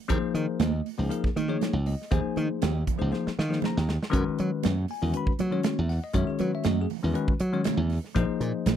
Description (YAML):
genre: electric jazz fusion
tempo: 119 BPM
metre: 4/4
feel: straight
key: unclear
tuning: A4 = 439 Hz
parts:
  - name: bell-like tine electric piano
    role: accompaniment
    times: 0.1-8.8 s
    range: Eb3 to B5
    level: -30 LUFS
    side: left 6 dB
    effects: phaser
  - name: glassy slap bass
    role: bass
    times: 0.1-8.8 s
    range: Bb1 to F#3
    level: -27 LUFS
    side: right 1 dB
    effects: none
  - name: modern studio drum kit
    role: drums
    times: 0.1-8.8 s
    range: hi-hat, kick drum, snare drum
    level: -29 LUFS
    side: right 1 dB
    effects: none
  - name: congas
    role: percussion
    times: 0.1-8.8 s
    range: none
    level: -33 LUFS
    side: right 21 dB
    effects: none
room: little or no reverb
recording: dry, close 1970s-style studio recording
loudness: -24 LUFS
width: side -10 dB against mid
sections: 0.0-8.8 A section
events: drum fill 3.1-4.1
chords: 0.1 Eb9sus4; 4.1 F#9sus4; 8.2 Bb9sus4